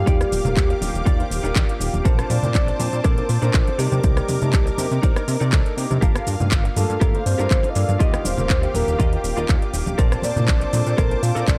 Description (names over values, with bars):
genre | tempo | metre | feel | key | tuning
nu-disco, nu disco | 121 BPM | 4/4 | swing 53% on 16ths | unclear | A4 = 440 Hz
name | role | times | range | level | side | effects
soft octave-layered synth lead | melody | 0.0-11.6 s | G4 to F5 | -28 LUFS | equal | chorus, phaser, analog delay
clear grand piano | accompaniment | 0.0-11.6 s | D3 to A5 | -32 LUFS | equal | none
lush unison pad | sustained chords | 0.0-11.6 s | G4 to D6 | -33 LUFS | equal | chorus, sidechain pumping
chorused synth bass | bass | 0.0-11.6 s | Eb1 to C3 | -25 LUFS | equal | none
direct-recorded clean electric guitar | riff | 0.1-11.6 s | D4 to F5 | -34 LUFS | equal | lush chorus
electronic kick drum | drums | 0.1-11.6 s | none | -21 LUFS | equal | none
house drum kit | drums | 0.1-11.6 s | handclaps, hi-hat, rim click, shaker | -31 LUFS | equal | none
congas | percussion | 0.3-10.8 s | none | -31 LUFS | equal | none
room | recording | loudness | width
little or no reverb | dry, gritty hardware recording | -20 LUFS | mono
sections
0.0-11.6 A section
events
none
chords
0.1 Ebmaj9; 2.1 Bbmaj9; 3.8 Cm9; 6.0 Gm9; 8.0 Ebmaj9; 10.0 Bbmaj9